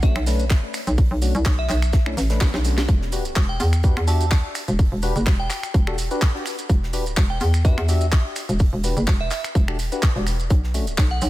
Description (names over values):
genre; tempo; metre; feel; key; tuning
bass house; 126 BPM; 4/4; swing 55% on 16ths; E minor; A4 = 438 Hz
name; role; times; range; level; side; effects
glassy synth bell; melody; 0.0-11.3 s; E5 to A5; -32 LUFS; right 2 dB; chorus, phaser, ping-pong delay
percussive organ stab; stabs; 0.0-10.9 s; A3 to E5; -30 LUFS; left 3 dB; analog chorus, sidechain pumping, ping-pong delay
hollow knocking FM bass; bass; 0.0-11.3 s; E1 to E2; -21 LUFS; equal; sidechain pumping
electronic kick drum; drums; 0.0-11.1 s; none; -17 LUFS; equal; none
garage drum kit; drums; 0.0-11.3 s; finger snaps, handclaps, hi-hat, snare drum; -29 LUFS; equal; none
modern studio drum kit; drums; 0.0-11.3 s; hi-hat, snare drum; -41 LUFS; right 2 dB; none
maracas; percussion; 0.0-11.3 s; none; -36 LUFS; right 4 dB; none
room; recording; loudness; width
small room ambience; none; -18 LUFS; side -16 dB against mid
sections
0.0-11.3 A section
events
filter sweep on synth stab 0.0-11.3; drum fill 2.4-2.9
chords
0.0 Bm7; 2.9 Em7; 10.5 Bm7